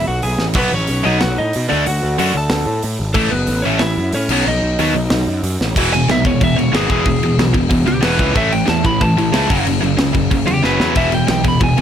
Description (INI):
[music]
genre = punk rock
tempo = 184 BPM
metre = 4/4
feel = straight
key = E major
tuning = A4 = 440 Hz
[part]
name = lightly driven lead guitar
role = melody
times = 0.0-11.8 s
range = A3 to B5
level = -20 LUFS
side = equal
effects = ping-pong delay
[part]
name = fuzz picked electric bass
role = bass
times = 0.0-11.8 s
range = E1 to B2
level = -20 LUFS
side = equal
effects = overdrive
[part]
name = tight metal drum kit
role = drums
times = 0.2-11.8 s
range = crash cymbal, hi-hat, kick drum, snare drum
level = -20 LUFS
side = equal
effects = none
[part]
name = tight distorted guitar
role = riff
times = 0.6-11.8 s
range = E2 to D4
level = -16 LUFS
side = equal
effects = distortion
[sound]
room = little or no reverb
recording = none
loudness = -13 LUFS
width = side -9 dB against mid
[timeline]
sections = 0.0-5.8 A section; 5.8-11.8 B section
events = half time 0.0-5.8; drum fill 0.4, 5.6, 10.6-11.0; lead electric guitar solo 5.8-11.8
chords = 0.0 E (rootless); 0.6 B; 1.7 D; 3.2 A; 4.3 B; 5.8 E; 8.4 A; 9.5 F#5; 11.0 E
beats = 0.24 | 0.56 0.89 1.22 1.54 | 1.87 2.19 2.52 2.84 | 3.17 3.50 3.82 4.14 | 4.47 4.79 5.12 5.45 | 5.77 6.10 6.42 6.75 | 7.07 7.40 7.72 8.05 | 8.37 8.70 9.02 9.35 | 9.67 10.00 10.32 10.65 | 10.97 11.30 11.62